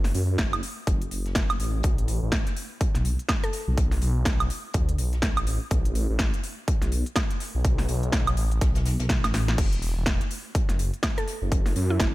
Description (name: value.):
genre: bass house.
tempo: 124 BPM.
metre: 4/4.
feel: swing 60% on 16ths.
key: F# minor.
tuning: A4 = 439 Hz.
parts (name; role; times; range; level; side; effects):
phased detuned saw bass; bass; 0.0-12.1 s; E1 to F#2; -25 LUFS; equal; phaser, sidechain pumping.
big-room dance drum kit; drums; 0.0-12.1 s; crash cymbal, hi-hat, snare drum, woodblock; -30 LUFS; right 1 dB; none.
open jazz drum kit; drums; 0.1-12.1 s; hi-hat, snare drum; -42 LUFS; left 3 dB; none.
electronic kick drum; drums; 0.4-12.1 s; none; -25 LUFS; equal; none.
mallet-like synth pluck; melody; 3.4-3.6, 11.2-12.1 s; E4 to A4; -33 LUFS; right 1 dB; chorus, digital delay.
room: digital ambience.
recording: none.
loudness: -23 LUFS.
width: side -18 dB against mid.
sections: 0.0-12.1 A section.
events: filter sweep on detuned saw bass 0.0-12.1; drum fill 9.2-9.6.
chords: 0.0 F#m; 1.8 N.C..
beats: 0.39 0.87 1.36 | 1.84 2.32 2.81 3.29 | 3.77 4.26 4.74 5.23 | 5.71 6.20 6.68 7.16 | 7.65 8.13 8.61 9.10 | 9.58 10.07 10.55 11.03 | 11.52 12.00.